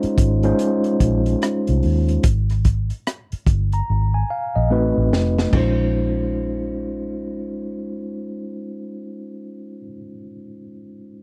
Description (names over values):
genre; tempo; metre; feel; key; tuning
R&B, neo-soul; 73 BPM; 4/4; swing 62% on 16ths; Bb minor; A4 = 440 Hz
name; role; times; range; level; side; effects
mellow tine electric piano; accompaniment; 0.0-11.2 s; Ab3 to Bb5; -25 LUFS; equal; none
vintage muted fingered electric bass; bass; 0.0-9.8 s; F1 to Eb2; -22 LUFS; equal; none
crunchy breakbeat drum kit; drums; 0.0-5.8 s; crash cymbal, hi-hat, kick drum, rim click, snare drum, toms; -21 LUFS; equal; none
room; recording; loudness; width
little or no reverb; dry, close 1970s-style studio recording; -20 LUFS; mono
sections
0.0-5.5 A section; 5.5-8.8 B section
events
drum fill 3.9-5.5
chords
0.0 Bbm11; 2.2 Fmadd9; 4.7 Adim7; 5.5 Bbm11